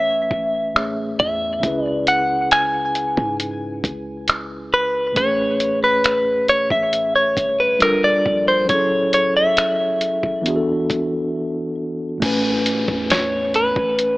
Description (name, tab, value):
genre	contemporary R&B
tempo	68 BPM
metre	4/4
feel	straight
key	A major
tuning	A4 = 440 Hz
part	direct-recorded clean electric guitar	melody	0.0-14.2 s	Bb4 to G#5	-17 LUFS	equal	tape echo
part	mellow tine electric piano	accompaniment	0.0-14.2 s	A2 to G#5	-23 LUFS	equal	medium stereo tremolo
part	clean 808-style bass	bass	0.0-14.2 s	E1 to G#2	-34 LUFS	equal	none
part	dusty soul sampler-style drum kit	drums	0.3-14.2 s	crash cymbal, finger snaps, hi-hat, kick drum, snare drum	-22 LUFS	equal	none
part	downlifter	sound effects	12.2-14.2 s	none	-28 LUFS	equal	none
room	light reverb, digital ambience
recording	AM radio sound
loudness	-17 LUFS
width	side -21 dB against mid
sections	0.0-12.2 A section; 12.2-14.2 B section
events	break 11.3-12.2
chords	0.0 Amaj7; 1.6 C#m7; 5.2 Amaj7; 7.8 Gm9; 8.7 F#m9; 10.5 E9sus4; 12.2 Amaj7